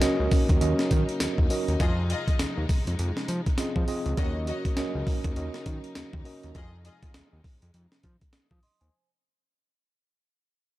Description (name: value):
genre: R&B, new jack swing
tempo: 101 BPM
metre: 4/4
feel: swing 60% on 16ths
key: unclear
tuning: A4 = 442 Hz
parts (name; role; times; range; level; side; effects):
- mellow tine electric piano; accompaniment; 0.0-9.1 s; C4 to Eb6; -30 LUFS; right 2 dB; medium stereo tremolo
- warm studio string section; sustained chords; 0.0-8.9 s; C3 to Eb4; -37 LUFS; left 1 dB; none
- fat analog bass; bass; 0.0-8.9 s; Db2 to F3; -29 LUFS; equal; none
- breakbeat sampler-style drum kit; drums; 0.0-8.9 s; hi-hat, kick drum, snare drum, tambourine; -26 LUFS; equal; none
- warm studio string section; stabs; 1.8-7.1 s; F4 to Eb5; -38 LUFS; left 4 dB; tape echo
room: little or no reverb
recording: dark, warm production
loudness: -24 LUFS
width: side -16 dB against mid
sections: 0.0-8.9 A section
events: fade-out 0.0-8.9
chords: 0.0 Ebm7; 1.8 Fm7; 4.2 Ebm7; 6.6 Fm7